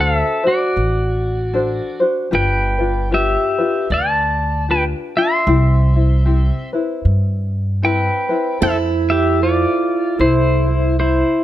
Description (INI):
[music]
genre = Hawaiian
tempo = 76 BPM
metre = 4/4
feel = swing 60% on 8ths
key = C major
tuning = A4 = 439 Hz
[part]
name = pedal steel guitar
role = melody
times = 0.0-11.4 s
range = E4 to C6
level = -18 LUFS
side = left 1 dB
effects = none
[part]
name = tenor ukulele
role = accompaniment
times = 0.0-11.4 s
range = C4 to C5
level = -21 LUFS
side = left 2 dB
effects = none
[part]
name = upright bass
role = bass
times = 0.0-11.2 s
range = G1 to G2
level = -17 LUFS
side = equal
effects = none
[part]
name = picked steel-string acoustic guitar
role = second line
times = 8.6-11.4 s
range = E4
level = -20 LUFS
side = right 9 dB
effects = none
[sound]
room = light reverb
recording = none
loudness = -14 LUFS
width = side -13 dB against mid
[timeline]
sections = 0.0-8.6 A section; 8.6-11.4 B section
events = none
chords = 0.0 D7; 2.3 G7; 5.5 Cmaj7; 8.6 Fmaj7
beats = 0.76 1.54 | 2.33 3.12 3.90 4.69 | 5.47 6.26 7.04 7.83 | 8.62 9.40 10.19 10.98